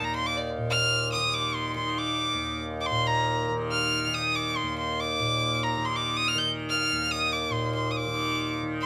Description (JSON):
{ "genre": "indian classical, Hindustani", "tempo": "140 BPM", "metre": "7/4", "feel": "straight", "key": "Eb raga yaman", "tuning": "A4 = 440 Hz", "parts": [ { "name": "clear violin", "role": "melody", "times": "0.0-8.9 s", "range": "D5 to G6", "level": "-28 LUFS", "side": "equal", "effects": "none" }, { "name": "tanpura", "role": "drone", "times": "0.0-8.9 s", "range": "Eb2 to Eb3", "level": "-32 LUFS", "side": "equal", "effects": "none" } ], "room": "light reverb", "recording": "close, detailed microphones", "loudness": "-27 LUFS", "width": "mono", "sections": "0.0-8.9 A section", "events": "none", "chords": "none" }